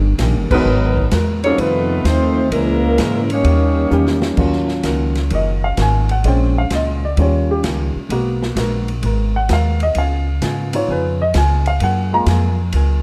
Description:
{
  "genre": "jazz, big band swing",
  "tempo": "129 BPM",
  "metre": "4/4",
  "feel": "swing 68% on 8ths",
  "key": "Eb minor from 4.4 s",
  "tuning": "A4 = 445 Hz",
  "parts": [
    { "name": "hollow-body jazz guitar", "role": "accompaniment", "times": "0.0-13.0 s", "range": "F2 to A#4", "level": "-27 LUFS", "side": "equal", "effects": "none" },
    { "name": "upright bass", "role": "bass", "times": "0.0-13.0 s", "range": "D#1 to G#2", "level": "-20 LUFS", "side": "equal", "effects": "none" },
    { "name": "swinging big-band drum kit", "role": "drums", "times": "0.2-12.9 s", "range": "crash cymbal, hi-hat, kick drum, ride cymbal, snare drum", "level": "-29 LUFS", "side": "equal", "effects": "none" },
    { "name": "warm saxophone section", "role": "melody", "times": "0.5-4.2 s", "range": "F#3 to C#5", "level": "-22 LUFS", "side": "equal", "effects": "none" },
    { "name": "dark trombone section", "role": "second line", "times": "0.5-4.2 s", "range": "C3 to C#4", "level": "-22 LUFS", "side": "equal", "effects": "none" },
    { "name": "warm baby grand piano", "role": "accompaniment", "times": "0.5-12.4 s", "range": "Gb3 to Bb5", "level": "-22 LUFS", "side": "equal", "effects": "none" }
  ],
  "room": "light reverb",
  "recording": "dark, warm production",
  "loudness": "-17 LUFS",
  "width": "mono",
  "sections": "0.0-4.4 A section; 4.4-13.0 B section",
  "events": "band accent 0.4; drum fill 3.9-4.4; grand piano solo 4.4-13.0",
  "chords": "0.0 D#7; 0.7 G#m9; 1.6 F7; 2.5 A#m7b5; 3.5 D#7; 4.4 Ebm7; 6.2 Bbm7; 7.2 Eb7; 8.1 Abm9; 10.0 Db7; 11.8 Gbmaj9"
}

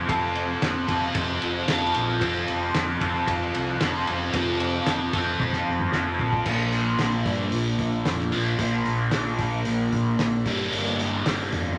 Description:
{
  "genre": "psychedelic rock",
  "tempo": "113 BPM",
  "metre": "4/4",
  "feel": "straight",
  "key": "unclear",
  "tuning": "A4 = 439 Hz",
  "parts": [
    { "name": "crunchy overdriven guitar", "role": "riff", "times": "0.0-11.8 s", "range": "G2 to A4", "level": "-27 LUFS", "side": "equal", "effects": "phaser" },
    { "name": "growling fingered electric bass", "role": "bass", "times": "0.0-11.8 s", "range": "F1 to G2", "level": "-33 LUFS", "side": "equal", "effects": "overdrive" },
    { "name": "cloth-damped thuddy drum kit", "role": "drums", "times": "0.1-11.7 s", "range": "crash cymbal, hi-hat, kick drum, ride cymbal, snare drum, toms", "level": "-31 LUFS", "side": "equal", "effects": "none" }
  ],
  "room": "moderate large studio reverb, RT60 1.1 s",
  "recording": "none",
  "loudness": "-25 LUFS",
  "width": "mono",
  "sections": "0.0-6.5 A section; 6.5-11.8 B section",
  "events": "drum fill 5.4-6.5",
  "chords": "0.0 F; 6.5 Bb; 10.5 Gm"
}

